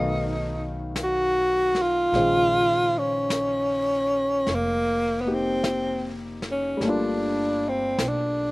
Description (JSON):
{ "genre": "jazz ballad", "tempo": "51 BPM", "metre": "4/4", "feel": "swing 66% on 8ths", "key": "unclear", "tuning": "A4 = 440 Hz", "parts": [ { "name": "breathy tenor saxophone", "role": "melody", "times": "0.0-8.5 s", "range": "Bb3 to F#4", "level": "-22 LUFS", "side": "equal", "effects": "slapback echo" }, { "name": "warm grand piano", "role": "accompaniment", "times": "0.0-8.5 s", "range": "Db3 to E#5", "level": "-30 LUFS", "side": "left 2 dB", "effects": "none" }, { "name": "upright bass", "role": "bass", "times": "0.0-8.5 s", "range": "F1 to B1", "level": "-34 LUFS", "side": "equal", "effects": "none" }, { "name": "vintage brush drum kit", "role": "drums", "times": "1.0-8.5 s", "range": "brushed snare drum, hi-hat, snare drum", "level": "-34 LUFS", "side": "left 1 dB", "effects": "none" } ], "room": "little or no reverb", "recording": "recorded outdoors, with no room sound", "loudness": "-22 LUFS", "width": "side -21 dB against mid", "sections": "0.0-8.5 A section", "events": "none", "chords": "0.0 B7#11; 2.1 Bbm11; 6.8 Gm9" }